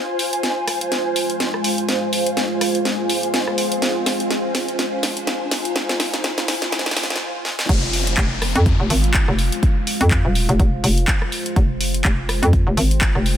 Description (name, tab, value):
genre	bass house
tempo	124 BPM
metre	4/4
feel	swing 57% on 16ths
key	F minor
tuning	A4 = 440 Hz
part	deep dark ambient pad	sustained chords	0.8-13.4 s	Ab3 to G5	-26 LUFS	left 1 dB	chorus, built-in reverb, sidechain pumping
part	riser and downlifter	sound effects	2.2-11.6 s	none	-31 LUFS	left 1 dB	none
part	ethereal airy pad	texture	0.0-7.2 s	F4 to Ab5	-24 LUFS	right 2 dB	ensemble chorus, built-in reverb, phaser, sidechain pumping
part	house drum kit	drums	0.2-13.4 s	crash cymbal, handclaps, hi-hat, rim click, snare drum	-22 LUFS	equal	small room reverb
part	hollow knocking FM bass	bass	7.7-13.4 s	Eb1 to F2	-18 LUFS	equal	overdrive, sidechain pumping
part	electronic kick drum	drums	7.7-13.1 s	none	-18 LUFS	equal	small room reverb
room	light reverb, digital ambience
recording	high-pass filter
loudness	-17 LUFS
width	side -10 dB against mid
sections	0.0-7.7 A section; 7.7-13.4 B section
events	build-up 0.0-7.7; drum fill 0.0-7.2, 7.5; riser 2.2-7.2; stop 7.2-7.7; drop 7.7-13.4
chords	0.0 Fm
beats	0.43 0.92 1.40 | 1.89 2.37 2.85 3.34 | 3.82 4.30 4.79 5.27 | 5.76 6.24 6.72 7.21 | 7.69 8.18 8.66 9.14 | 9.63 10.11 10.60 11.08 | 11.56 12.05 12.53 13.02